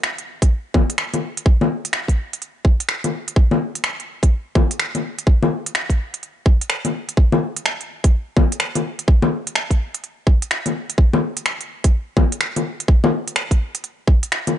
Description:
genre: future garage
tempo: 126 BPM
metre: 4/4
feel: swing 64% on 16ths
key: none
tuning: none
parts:
  - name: organic electronic drum kit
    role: drums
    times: 0.0-14.5 s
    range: bongos, finger snaps, hi-hat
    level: -20 LUFS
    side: left 2 dB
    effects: overdrive
  - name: electronic kick drum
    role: drums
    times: 0.4-14.2 s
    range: none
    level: -14 LUFS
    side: equal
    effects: overdrive
room: little or no reverb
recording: nothing above 10.5 kHz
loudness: -17 LUFS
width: side -12 dB against mid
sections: 0.0-14.6 A section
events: none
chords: none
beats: 0.03 0.51 0.99 | 1.46 1.94 2.42 2.89 | 3.37 3.84 4.32 4.80 | 5.27 5.75 6.22 6.70 | 7.18 7.65 8.13 8.61 | 9.08 9.56 10.03 10.51 | 10.99 11.46 11.94 12.41 | 12.89 13.37 13.84 14.32

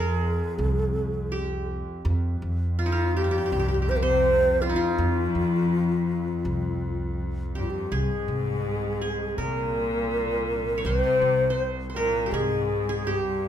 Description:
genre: arabic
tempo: 82 BPM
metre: 4/4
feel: straight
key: F maqam rast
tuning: A4 = 436 Hz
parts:
  - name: breathy mellow ney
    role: melody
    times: 0.0-13.5 s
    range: F4 to C5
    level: -26 LUFS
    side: left 1 dB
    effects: none
  - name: qanun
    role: second line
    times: 0.0-13.5 s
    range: E4-50c to Db5+25c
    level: -32 LUFS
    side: right 2 dB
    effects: none
  - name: upright bass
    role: bass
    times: 0.0-12.6 s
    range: C2 to C3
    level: -28 LUFS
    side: equal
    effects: none
  - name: bright double bass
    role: drone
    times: 0.0-13.5 s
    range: C2 to F2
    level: -34 LUFS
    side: equal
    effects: none
  - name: rich studio cello section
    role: second line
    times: 2.8-13.5 s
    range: F2 to C3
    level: -29 LUFS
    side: left 3 dB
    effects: none
room: light reverb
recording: minimal, uncompressed stereo recording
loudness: -23 LUFS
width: side -10 dB against mid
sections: 0.0-7.9 A section; 7.9-13.5 B section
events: none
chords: none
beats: 0.59 1.33 | 2.06 2.79 3.53 4.26 | 4.99 5.72 6.46 7.19 | 7.92 8.66 9.39 10.12 | 10.86 11.59 12.32 13.05

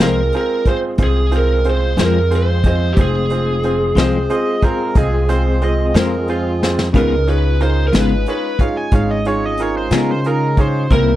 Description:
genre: slow blues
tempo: 60 BPM (dotted quarters)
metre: 12/8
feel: straight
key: F minor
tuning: A4 = 440 Hz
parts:
  - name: lead guitar through a small cranked amp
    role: melody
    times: 0.0-11.2 s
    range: G4 to C5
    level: -20 LUFS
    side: right 1 dB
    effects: overdrive
  - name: bright upright piano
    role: accompaniment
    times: 0.0-11.2 s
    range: C4 to Eb5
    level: -22 LUFS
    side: right 4 dB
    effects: none
  - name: clean electric guitar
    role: accompaniment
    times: 0.0-11.1 s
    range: C3 to F4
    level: -18 LUFS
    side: left 6 dB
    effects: tremolo
  - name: tonewheel organ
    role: sustained chords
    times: 0.0-11.2 s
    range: Ab3 to Ab4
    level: -25 LUFS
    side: left 1 dB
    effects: slow rotary speaker
  - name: upright bass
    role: bass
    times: 0.0-11.2 s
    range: F1 to Db3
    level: -18 LUFS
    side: equal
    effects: none
  - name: vintage brush drum kit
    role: drums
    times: 0.0-11.1 s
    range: hi-hat, kick drum, snare drum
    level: -16 LUFS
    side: equal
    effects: none
  - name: overdriven slide guitar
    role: second line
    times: 4.0-10.9 s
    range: F4 to Ab5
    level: -23 LUFS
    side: right 2 dB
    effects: none
room: little or no reverb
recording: none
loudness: -14 LUFS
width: side -14 dB against mid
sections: 0.0-11.2 A section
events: drum fill 6.6-6.9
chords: 0.0 Fm; 6.9 Db7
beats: 0.99 1.98 | 2.97 3.96 4.96 5.95 | 6.94 7.93 8.92 9.92 | 10.91

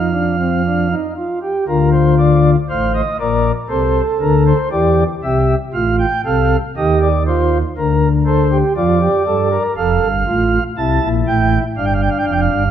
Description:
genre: classical, baroque-style 3-part fugue for pipe organ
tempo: 60 BPM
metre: 4/4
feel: straight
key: Bb major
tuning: A4 = 442 Hz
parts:
  - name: pipe organ, flutes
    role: solo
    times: 0.0-12.7 s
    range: F1 to A5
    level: -13 LUFS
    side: equal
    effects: none
room: moderate scoring stage reverb, RT60 1.6 s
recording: none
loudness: -13 LUFS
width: side -9 dB against mid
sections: 0.0-1.7 A section; 1.7-12.7 B section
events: none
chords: 0.0 F5; 1.7 Bb/D; 3.7 C7; 5.7 F/A; 7.8 Bb/D; 9.8 F; 11.8 G7(no3)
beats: 0.65 | 1.68 2.70 3.72 4.73 | 5.75 6.76 7.76 8.77 | 9.77 10.77 11.77

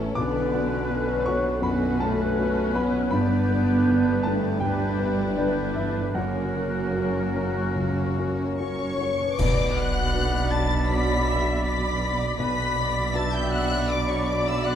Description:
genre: cinematic, emotional film score for orchestra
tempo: 70-83 BPM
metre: 4/4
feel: rubato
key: B minor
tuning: A4 = 441 Hz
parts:
  - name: warm symphonic violin section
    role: melody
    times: 0.0-14.8 s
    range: A4 to B6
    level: -33 LUFS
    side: left 3 dB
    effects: none
  - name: rich chamber violin section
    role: second line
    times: 0.0-14.8 s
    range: D4 to B5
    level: -38 LUFS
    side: left 4 dB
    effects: none
  - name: dark baby grand piano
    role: accompaniment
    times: 0.0-14.8 s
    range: B1 to D6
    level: -30 LUFS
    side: left 2 dB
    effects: none
  - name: rich symphonic viola section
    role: accompaniment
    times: 0.0-14.8 s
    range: D3 to E5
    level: -32 LUFS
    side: right 3 dB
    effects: none
  - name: warm French horn section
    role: sustained chords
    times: 0.0-14.8 s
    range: D3 to C#5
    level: -29 LUFS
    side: equal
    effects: none
  - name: concert harp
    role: arpeggios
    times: 0.0-13.2 s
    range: F#2 to C#6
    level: -32 LUFS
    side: left 4 dB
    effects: none
  - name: rich symphonic cello section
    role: bass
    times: 0.0-14.8 s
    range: F#2 to B2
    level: -31 LUFS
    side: right 3 dB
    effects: none
  - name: rich symphonic double bass section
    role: bass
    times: 0.0-14.8 s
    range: F#1 to B1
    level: -30 LUFS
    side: right 2 dB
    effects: none
  - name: clear clarinet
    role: second line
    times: 0.2-14.8 s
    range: C#4 to D5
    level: -34 LUFS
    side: left 1 dB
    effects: none
  - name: mellow large flute ensemble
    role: second line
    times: 0.2-14.8 s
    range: C#5 to G6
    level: -34 LUFS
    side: left 3 dB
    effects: none
  - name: warm oboe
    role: second line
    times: 0.2-14.8 s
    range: A#4 to B5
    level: -37 LUFS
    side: equal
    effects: none
  - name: clash cymbals and concert bass drum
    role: percussion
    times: 9.4-10.9 s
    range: none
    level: -30 LUFS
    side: equal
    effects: none
room: moderate scoring stage reverb, RT60 1.6 s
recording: dark, warm production, lossy compression artefacts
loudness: -22 LUFS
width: side -9 dB against mid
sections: 0.0-9.4 A section; 9.4-14.8 B section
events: band accent 9.4-10.1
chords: 0.2 Bmadd9; 3.1 G; 6.2 F#; 9.4 Bm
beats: | 0.17 0.91 1.64 2.38 | 3.13 3.87 4.61 5.37 | 6.16 6.96 7.76 8.59 | 9.38 10.13 10.89 11.64 | 12.39 13.14 13.89 14.64

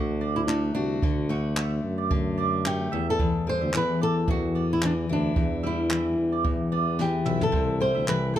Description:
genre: acoustic pop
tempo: 111 BPM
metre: 4/4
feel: swing 55% on 16ths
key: E minor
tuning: A4 = 443 Hz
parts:
  - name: flamenco guitar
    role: melody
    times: 0.0-8.4 s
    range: D4 to C5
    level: -28 LUFS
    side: equal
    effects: none
  - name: picked steel-string acoustic guitar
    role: accompaniment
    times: 0.0-8.4 s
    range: E2 to F#4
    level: -29 LUFS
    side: left 4 dB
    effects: none
  - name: warm tuba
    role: bass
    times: 0.0-8.4 s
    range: B1 to F#2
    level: -29 LUFS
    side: right 1 dB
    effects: none
  - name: mandolin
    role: arpeggios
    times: 0.2-8.4 s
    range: B4 to F#5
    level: -33 LUFS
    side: right 10 dB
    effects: none
  - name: jazz brush drum kit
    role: drums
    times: 0.5-8.2 s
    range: handclaps, kick drum, snare drum, toms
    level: -28 LUFS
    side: right 1 dB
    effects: none
room: little or no reverb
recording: close, detailed microphones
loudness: -23 LUFS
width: side -11 dB against mid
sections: 0.0-8.4 A section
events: drum fill 7.0-7.5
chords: 0.0 D; 2.9 Em; 7.5 C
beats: 0.49 | 1.03 1.57 2.11 2.65 | 3.20 3.74 4.28 4.82 | 5.37 5.91 6.45 6.99 | 7.53 8.08

